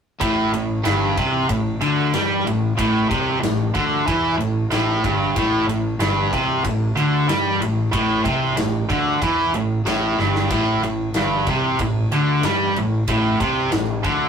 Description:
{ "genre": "hard rock", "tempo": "93 BPM", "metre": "4/4", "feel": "straight", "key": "unclear", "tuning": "A4 = 440 Hz", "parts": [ { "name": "crunchy overdriven guitar", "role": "riff", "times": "0.2-14.3 s", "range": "G2 to G3", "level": "-22 LUFS", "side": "left 3 dB", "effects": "phaser" }, { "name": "tight distorted guitar", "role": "riff", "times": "0.2-14.3 s", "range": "G2 to G3", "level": "-21 LUFS", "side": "right 3 dB", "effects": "distortion" }, { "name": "fuzz fingered electric bass", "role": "bass", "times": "0.2-14.3 s", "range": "G1 to G2", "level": "-28 LUFS", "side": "left 1 dB", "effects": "overdrive" }, { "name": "big rock drum kit", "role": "drums", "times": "0.2-14.2 s", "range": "kick drum, ride cymbal, snare drum", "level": "-27 LUFS", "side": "left 1 dB", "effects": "none" } ], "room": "wet booth ambience, RT60 0.2 s", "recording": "rough rehearsal-room recording, tube saturation", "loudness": "-17 LUFS", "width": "side -7 dB against mid", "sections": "0.2-14.3 A section", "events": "drum fill 10.2-10.5", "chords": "0.2 A5", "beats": "| 0.20 0.85 1.49 2.14 | 2.78 3.42 4.07 4.71 | 5.36 6.00 6.64 7.29 | 7.93 8.57 9.22 9.86 | 10.51 11.15 11.79 12.44 | 13.08 13.72" }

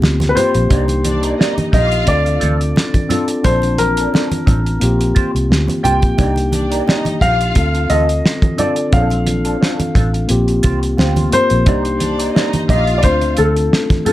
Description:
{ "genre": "lush 1970s-style soul", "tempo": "88 BPM", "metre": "4/4", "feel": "swing 54% on 16ths", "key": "unclear", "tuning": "A4 = 440 Hz", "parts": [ { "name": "mellow tine electric piano", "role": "accompaniment", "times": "0.0-14.1 s", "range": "D3 to A5", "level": "-20 LUFS", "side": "left 2 dB", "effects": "none" }, { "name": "electric guitar through a small old amp", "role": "riff", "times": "0.0-14.1 s", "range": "C4 to D5", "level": "-26 LUFS", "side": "right 4 dB", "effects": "wah, wide subtle chorus" }, { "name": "vintage muted fingered electric bass", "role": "bass", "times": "0.0-13.7 s", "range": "A1 to D2", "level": "-17 LUFS", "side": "equal", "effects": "none" }, { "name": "cloth-damped thuddy drum kit", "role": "drums", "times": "0.0-14.1 s", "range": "hi-hat, kick drum, snare drum", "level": "-16 LUFS", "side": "equal", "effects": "none" }, { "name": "congas", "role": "percussion", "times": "0.0-14.1 s", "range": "none", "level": "-24 LUFS", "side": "right 3 dB", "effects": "none" }, { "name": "dark baby grand piano", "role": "melody", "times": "0.3-14.1 s", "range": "A4 to G5", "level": "-19 LUFS", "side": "left 2 dB", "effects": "none" }, { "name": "warm studio string section", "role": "second line", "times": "1.0-2.4, 6.5-7.9, 12.0-13.3 s", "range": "D4 to F5", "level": "-24 LUFS", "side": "left 2 dB", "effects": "none" } ], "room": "studio reverb", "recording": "none", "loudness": "-12 LUFS", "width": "side -14 dB against mid", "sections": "0.0-14.1 A section", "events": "none", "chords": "0.0 Bb69; 0.7 Cm9; 2.1 Dm7; 3.4 Bbmaj9; 4.8 Bb69; 6.2 Cm9; 7.6 Dm7; 8.9 Bbmaj9; 10.3 Bb69; 11.7 Cm9; 13.0 Dm7", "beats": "0.02 | 0.71 1.39 2.08 2.76 | 3.45 4.13 4.82 5.50 | 6.19 6.87 7.56 8.24 | 8.93 9.61 10.30 10.98 | 11.67 12.35 13.04 13.72" }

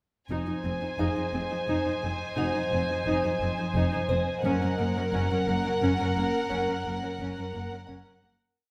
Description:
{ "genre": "cinematic, suspense film score", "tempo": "87 BPM", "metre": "3/4", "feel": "straight", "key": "F phrygian", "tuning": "A4 = 440 Hz", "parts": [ { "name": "warm chamber violin section", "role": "melody", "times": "0.3-8.3 s", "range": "Gb5 to Ab5", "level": "-38 LUFS", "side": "equal", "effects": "none" }, { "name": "warm chamber violin section", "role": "second line", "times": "0.3-8.3 s", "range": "Bb4 to C5", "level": "-35 LUFS", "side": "equal", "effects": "none" }, { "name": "warm chamber viola section", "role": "accompaniment", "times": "0.3-8.3 s", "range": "Bb3 to Eb4", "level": "-35 LUFS", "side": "equal", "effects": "none" }, { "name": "glassy FM pad", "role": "sustained chords", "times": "1.3-8.6 s", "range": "Db4 to Ab5", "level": "-38 LUFS", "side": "equal", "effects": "ensemble chorus, built-in reverb" }, { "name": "warm chamber cello section", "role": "bass", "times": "0.3-8.3 s", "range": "F2 to Gb2", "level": "-36 LUFS", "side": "equal", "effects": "none" }, { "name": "warm chamber double bass section", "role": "bass", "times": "0.3-8.3 s", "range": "F1 to Gb1", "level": "-35 LUFS", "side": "equal", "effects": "none" }, { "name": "music box", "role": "texture", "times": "1.0-8.5 s", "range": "Gb4 to Gb5", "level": "-40 LUFS", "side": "equal", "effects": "none" } ], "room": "wet scoring stage reverb, RT60 2.0 s", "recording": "recorded in a church or concert hall", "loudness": "-28 LUFS", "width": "mono", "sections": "0.3-8.6 A section", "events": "fade-out 6.5-8.6", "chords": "0.3 Fm7; 4.4 Gb", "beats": "| 0.30 0.99 1.68 | 2.37 3.06 3.75 | 4.44 5.13 5.82 | 6.51 7.20 7.89" }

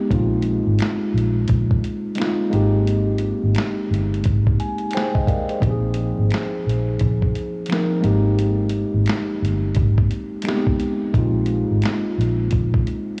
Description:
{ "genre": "lo-fi hip hop", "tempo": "87 BPM", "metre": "4/4", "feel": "swing 62% on 16ths", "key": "unclear", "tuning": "A4 = 440 Hz", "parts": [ { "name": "mellow tine electric piano", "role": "accompaniment", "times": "0.0-13.2 s", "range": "F3 to Ab5", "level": "-25 LUFS", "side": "equal", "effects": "cassette tape, low-pass filter" }, { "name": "vintage muted fingered electric bass", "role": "bass", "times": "0.1-12.8 s", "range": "G1 to Bb1", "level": "-22 LUFS", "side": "equal", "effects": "none" }, { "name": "dusty soul sampler-style drum kit", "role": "drums", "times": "0.1-13.2 s", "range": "hi-hat, kick drum, snare drum", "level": "-26 LUFS", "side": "equal", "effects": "vintage 12-bit sampler grit" }, { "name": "finger snap", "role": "percussion", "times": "0.8-12.0 s", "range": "none", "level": "-42 LUFS", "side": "equal", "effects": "none" } ], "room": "moderate cathedral reverb, RT60 5.2 s", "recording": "dreamy mix soaked in reverb, cassette tape, studio reverb", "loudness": "-20 LUFS", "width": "mono", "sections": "0.0-13.2 A section", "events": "tine electric piano fill 4.2-5.6", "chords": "0.1 Bb7sus4; 2.5 Abmaj7; 5.6 Bb7sus4; 8.0 Abmaj7; 11.1 Bb7sus4", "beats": "| 0.11 0.80 1.49 2.18 | 2.87 3.56 4.25 4.94 | 5.63 6.32 7.00 7.70 | 8.38 9.07 9.76 10.45 | 11.14 11.83 12.52" }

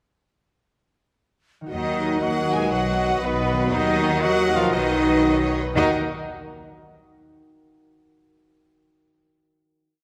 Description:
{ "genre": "cinematic, heroic adventure film score", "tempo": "119 BPM (dotted quarters)", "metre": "6/8", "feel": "straight", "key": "Eb minor", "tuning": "A4 = 442 Hz", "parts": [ { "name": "concert harp", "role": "arpeggios", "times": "1.6-6.0 s", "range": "B2 to Gb5", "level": "-36 LUFS", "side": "equal", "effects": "none" }, { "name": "clear studio violin section", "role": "melody", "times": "1.7-6.0 s", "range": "B4 to Ab5", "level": "-31 LUFS", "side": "equal", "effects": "none" }, { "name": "clear oboe", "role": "second line", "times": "1.7-5.9 s", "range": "Eb5", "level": "-33 LUFS", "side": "equal", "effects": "none" }, { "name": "concert flute", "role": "second line", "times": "1.7-6.0 s", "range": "Gb5", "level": "-34 LUFS", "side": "equal", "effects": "none" }, { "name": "mellow clarinet", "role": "second line", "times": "1.7-5.9 s", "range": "Bb4 to B4", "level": "-35 LUFS", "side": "equal", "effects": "none" }, { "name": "mellow French horn section", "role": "sustained chords", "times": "1.7-5.9 s", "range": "B3 to Ab4", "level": "-29 LUFS", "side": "equal", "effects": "none" }, { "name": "warm trombone section", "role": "sustained chords", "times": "1.7-5.9 s", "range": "Eb3 to Gb3", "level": "-34 LUFS", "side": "equal", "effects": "none" }, { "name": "clear trumpet", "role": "stabs", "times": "1.7-5.9 s", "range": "B3 to Ab4", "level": "-31 LUFS", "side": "equal", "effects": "none" }, { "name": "clear symphonic cello section", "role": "bass", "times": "1.7-6.0 s", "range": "B2 to Ab3", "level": "-30 LUFS", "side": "equal", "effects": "none" }, { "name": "rich symphonic double bass section", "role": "bass", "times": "1.7-6.0 s", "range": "B1 to Eb2", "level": "-32 LUFS", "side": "equal", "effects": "none" }, { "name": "rich studio violin section", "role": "second line", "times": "1.9-6.0 s", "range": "Bb4 to Eb5", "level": "-35 LUFS", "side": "equal", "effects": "none" }, { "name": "rich symphonic viola section", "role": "accompaniment", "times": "1.9-6.0 s", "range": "Gb3 to Gb4", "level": "-33 LUFS", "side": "equal", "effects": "none" } ], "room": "wet concert hall reverb, RT60 1.9 s", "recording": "none", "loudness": "-21 LUFS", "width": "mono", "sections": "1.7-5.8 theme; 5.8-6.8 final chord", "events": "none", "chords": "1.7 Ebm; 2.7 B; 3.7 Ebm; 4.7 B; 5.8 Ebm", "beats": "| 1.73 2.23 | 2.73 3.22 | 3.72 4.22 | 4.74 5.25 | 5.77" }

